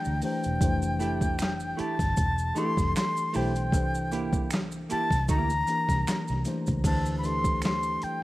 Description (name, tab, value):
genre	R&B, neo-soul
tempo	77 BPM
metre	4/4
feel	swing 56% on 16ths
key	unclear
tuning	A4 = 440 Hz
part	breathy bright concert flute	melody	0.0-8.2 s	G5 to C6	-30 LUFS	left 1 dB	none
part	tine electric piano	accompaniment	0.0-8.2 s	E3 to D5	-32 LUFS	left 2 dB	phaser
part	maracas and finger snaps	percussion	0.0-8.0 s	none	-42 LUFS	right 4 dB	none
part	vintage muted fingered electric bass	bass	0.1-8.1 s	E1 to D2	-31 LUFS	equal	none
part	dusty soul sampler-style drum kit	drums	0.2-8.2 s	crash cymbal, handclaps, hi-hat, kick drum, snare drum	-29 LUFS	equal	overdrive
part	archtop guitar, miked and amplified	second line	1.0-5.5 s	A3 to G4	-35 LUFS	right 6 dB	none
room	light reverb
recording	rough home demo mix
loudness	-25 LUFS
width	side -17 dB against mid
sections	0.0-6.8 A section; 6.8-8.2 B section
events	none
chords	0.0 C69; 0.6 Fmaj9; 3.7 C7; 6.8 Dsus2